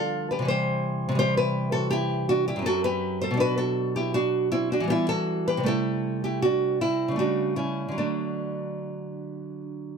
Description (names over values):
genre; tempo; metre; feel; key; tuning
classical, baroque-style dance for nylon-string guitar; 79 BPM; 3/4; uneven beats, rubato; unclear; A4 = 445 Hz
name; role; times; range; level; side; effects
nylon-string guitar; solo; 0.0-10.0 s; F#2 to C5; -24 LUFS; right 1 dB; none
room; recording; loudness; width
light reverb; close, detailed microphones; -23 LUFS; side -6 dB against mid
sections
0.0-10.0 A section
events
none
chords
0.5 C; 2.7 F#dim; 3.4 Bm; 4.9 Em; 5.7 Am7/C; 7.2 A7/C#; 8.0 D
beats
0.46 | 1.18 1.91 2.65 | 3.40 4.14 4.89 | 5.65 6.41 7.17 | 7.98 8.82 9.65